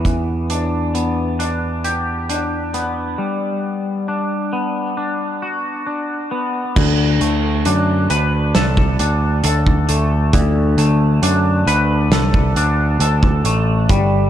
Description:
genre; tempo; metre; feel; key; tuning
post-rock; 67 BPM; 4/4; straight; unclear; A4 = 441 Hz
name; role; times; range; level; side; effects
twangy electric guitar; arpeggios; 0.0-14.3 s; D3 to B4; -19 LUFS; left 2 dB; analog chorus, tape echo
picked electric bass; bass; 0.0-14.3 s; G1 to F#2; -17 LUFS; right 1 dB; none
loose indie drum kit; drums; 0.1-14.1 s; crash cymbal, hi-hat, kick drum, snare drum; -19 LUFS; right 1 dB; none
room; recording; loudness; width
moderate lush hall reverb, RT60 3.0 s; big arena sound; -15 LUFS; side -10 dB against mid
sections
0.0-6.8 A section; 6.8-14.3 B section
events
break 3.2-6.8; build-up 6.8-14.3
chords
0.0 Em7; 3.2 Gmaj7; 6.8 D5

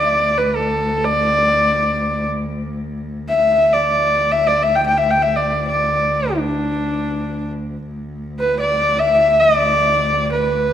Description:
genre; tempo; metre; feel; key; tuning
mongolian traditional, Mongolian folk; free time; none; none; D zhi mode; A4 = 441 Hz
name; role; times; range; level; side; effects
clear horsehead fiddle; melody; 0.0-10.7 s; D4 to G5; -15 LUFS; equal; none
rich cello; drone; 0.0-10.7 s; D2; -24 LUFS; equal; none
room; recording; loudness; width
wet recital hall reverb, RT60 1.7 s; none; -15 LUFS; side -10 dB against mid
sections
0.0-7.9 A section; 7.9-10.7 A section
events
none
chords
none

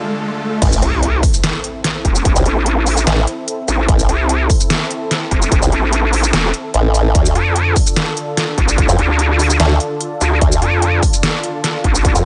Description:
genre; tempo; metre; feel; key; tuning
heavy wobble dubstep; 147 BPM; 4/4; half-time; A minor; A4 = 440 Hz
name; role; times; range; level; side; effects
supersaw chords; sustained chords; 0.0-12.2 s; D2 to A4; -26 LUFS; equal; sidechain pumping, low-pass filter
riser and impact; sound effects; 0.0-2.3 s; none; -25 LUFS; equal; none
formant-sweep wobble bass; bass; 0.6-12.2 s; A1 to F2; -16 LUFS; equal; chorus, overdrive
dubstep drum kit; drums; 0.6-12.2 s; crash cymbal, hi-hat, shaker, snare drum; -22 LUFS; equal; small room ambience
electronic kick drum; drums; 0.6-12.1 s; none; -17 LUFS; equal; small room ambience
vowel-sweep wobble bass; bass; 0.8-12.1 s; E1 to F2; -17 LUFS; equal; chorus, overdrive
room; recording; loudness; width
little or no reverb; nothing above 10.3 kHz; -15 LUFS; mono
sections
0.6-12.2 A section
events
break 0.0-0.6; riser 0.0-0.6; drop 0.6-12.2; impact 0.6-2.3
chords
0.0 Dm; 0.6 Am; 7.1 Dm

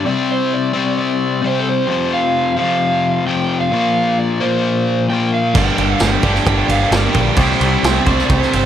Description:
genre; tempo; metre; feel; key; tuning
classic rock; 131 BPM; 4/4; straight; unclear; A4 = 439 Hz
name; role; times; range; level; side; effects
overdriven slide guitar; melody; 0.0-8.7 s; A4 to G5; -20 LUFS; right 3 dB; none
crunchy overdriven guitar; riff; 0.0-8.7 s; F2 to C4; -17 LUFS; left 5 dB; harmonic tremolo
cranked stack guitar; riff; 5.5-8.7 s; G2 to C5; -20 LUFS; right 16 dB; overdrive
growling picked electric bass; bass; 5.5-8.7 s; G1 to C2; -18 LUFS; right 1 dB; overdrive
vintage drum kit; drums; 5.5-8.6 s; crash cymbal, kick drum, ride cymbal, snare drum; -17 LUFS; right 1 dB; none
picked twelve-string acoustic guitar; accompaniment; 5.6-8.7 s; G3 to D5; -27 LUFS; right 11 dB; none
room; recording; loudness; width
light reverb, small room reverb; none; -13 LUFS; side -10 dB against mid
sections
0.0-8.7 A section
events
none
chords
0.1 Csus2; 1.9 F5; 3.7 Bbsus2; 5.6 Gm; 7.4 Csus2

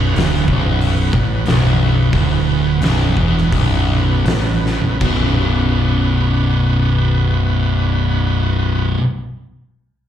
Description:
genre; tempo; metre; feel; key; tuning
stoner and doom metal; 78-93 BPM; 4/4; straight; B minor; A4 = 441 Hz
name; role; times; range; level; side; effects
bright tonewheel organ; sustained chords; 0.0-8.9 s; B3 to B4; -27 LUFS; right 1 dB; slow rotary speaker, overdrive
fuzz guitar; riff; 0.0-9.0 s; B1 to B2; -20 LUFS; left 7 dB; distortion
thick fuzz guitar; riff; 0.0-9.0 s; B1 to B2; -20 LUFS; right 6 dB; distortion
growling picked electric bass; bass; 0.0-8.9 s; B0 to A1; -18 LUFS; equal; overdrive
oversized low-tuned drum kit; drums; 0.2-5.2 s; crash cymbal, hi-hat, kick drum, snare drum, toms; -20 LUFS; equal; none
room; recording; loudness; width
light reverb; live gig heard through the venue's PA, club reverb; -13 LUFS; side -10 dB against mid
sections
0.0-5.0 A section; 5.0-8.1 B section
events
slowing down 0.0-5.0; drum fill 4.6-5.0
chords
0.0 Bm; 5.0 B5

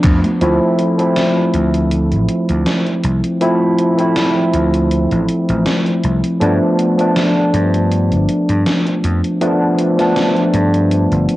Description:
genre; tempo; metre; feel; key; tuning
vaporwave; 80 BPM; 4/4; swing 54% on 16ths; D dorian; A4 = 439 Hz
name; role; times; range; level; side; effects
overdriven tine electric piano; accompaniment; 0.0-11.4 s; F3 to E4; -14 LUFS; equal; analog chorus, vintage 12-bit sampler grit, cassette tape, analog delay
vintage slap bass; bass; 0.0-11.3 s; G1 to G2; -17 LUFS; equal; tube saturation
gated 80s digital drum machine; drums; 0.0-11.4 s; congas, handclaps, hi-hat, snare drum; -22 LUFS; equal; gated reverb, gated reverb snare, overdrive, cassette tape
room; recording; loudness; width
moderate spring reverb, RT60 2.2 s; home recording on cassette; -12 LUFS; side -17 dB against mid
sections
0.4-11.4 A section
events
drum fill 0.0-0.4; band accent 0.0-0.4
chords
0.4 Dm9; 6.4 G7

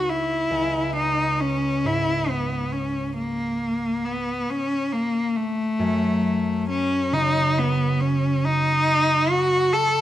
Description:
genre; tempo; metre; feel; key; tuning
classical, impressionist duo for cello and harp; 46 BPM (dotted quarters); 12/8; rubato; C# minor; A4 = 440 Hz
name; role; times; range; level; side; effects
rich cello; melody; 0.0-10.0 s; A3 to A4; -21 LUFS; left 1 dB; none
concert harp; accompaniment; 0.0-10.0 s; C#2 to D#4; -26 LUFS; right 2 dB; none
room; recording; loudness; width
light reverb; close, detailed microphones; -20 LUFS; side -12 dB against mid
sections
0.0-10.0 A section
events
none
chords
0.0 C#m11; 0.5 C#5; 5.8 F#m6

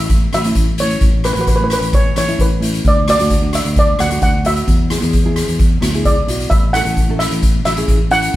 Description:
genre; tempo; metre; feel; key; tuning
calypso; 131 BPM; 4/4; straight; A major; A4 = 441 Hz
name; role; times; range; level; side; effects
steel pan; melody; 0.0-8.4 s; B4 to F#5; -18 LUFS; equal; none
nylon-string guitar; accompaniment; 0.0-8.4 s; A3 to A4; -22 LUFS; equal; none
fingered electric bass; bass; 0.0-8.4 s; A1 to E2; -20 LUFS; left 1 dB; none
street-band drum kit; drums; 0.1-8.4 s; hi-hat, kick drum, rim click; -15 LUFS; equal; none
room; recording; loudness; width
light reverb; band playing live in one room; -12 LUFS; side -15 dB against mid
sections
0.0-8.4 A section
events
none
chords
0.0 Aadd9; 2.9 D; 4.7 E; 6.5 A

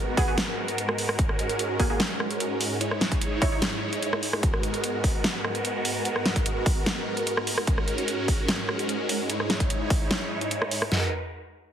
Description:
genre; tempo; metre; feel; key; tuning
heavy wobble dubstep; 148 BPM; 4/4; half-time; G# minor; A4 = 440 Hz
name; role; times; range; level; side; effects
supersaw chords; sustained chords; 0.0-11.1 s; G#2 to C#5; -28 LUFS; right 1 dB; phaser, sidechain pumping
orchestra-hit-like synth stab; stabs; 0.2-3.6 s; A#3 to C#5; -32 LUFS; right 2 dB; built-in reverb, dub echo
dubstep drum kit; drums; 0.2-11.0 s; kick drum, snare drum, toms; -26 LUFS; equal; overdrive, small room reverb
dubstep drum kit; drums; 0.2-10.9 s; hi-hat, rim click, snare drum; -28 LUFS; equal; small room reverb
room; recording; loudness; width
moderate digital room reverb, RT60 1.3 s; heavily compressed radio sound, multiband compression; -24 LUFS; side -9 dB against mid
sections
0.0-10.9 A section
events
none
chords
0.0 G#m7; 1.2 F#add9/G#; 2.8 C#madd9/G#; 4.4 G#m7; 7.7 F#add9/G#; 9.3 C#madd9/G#; 10.9 G#m7

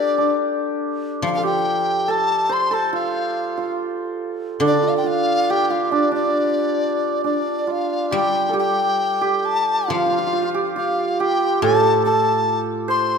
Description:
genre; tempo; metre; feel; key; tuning
chinese traditional, Chinese chamber ensemble; 70 BPM; 4/4; rubato; D yu mode; A4 = 440 Hz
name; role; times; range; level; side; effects
mellow hollow large dizi; melody; 0.0-13.2 s; D5 to C6; -21 LUFS; left 3 dB; none
hammered dulcimer; second line; 0.0-13.2 s; D4 to C5; -21 LUFS; right 3 dB; none
guzheng; accompaniment; 1.2-13.2 s; A2 to G3; -24 LUFS; right 1 dB; none
room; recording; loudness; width
moderate scoring stage reverb, RT60 1.7 s; none; -18 LUFS; side -6 dB against mid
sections
0.0-8.1 A section; 8.1-13.2 B section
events
none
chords
none

